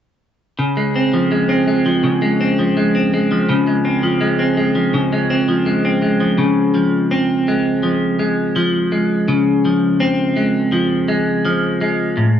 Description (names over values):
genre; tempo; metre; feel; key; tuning
indie pop; 83 BPM; 4/4; straight; Db major; A4 = 444 Hz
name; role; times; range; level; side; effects
clean electric guitar; solo; 0.6-12.4 s; A2 to C4; -14 LUFS; equal; wide subtle chorus, vibrato effect
room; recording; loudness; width
moderate studio reverb, RT60 0.6 s; worn, warbling old tape, cassette tape, warbly pitch drift, nothing above 7.8 kHz; -14 LUFS; side -9 dB against mid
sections
0.6-6.4 A section; 6.4-12.4 B section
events
none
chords
0.6 Dbmaj7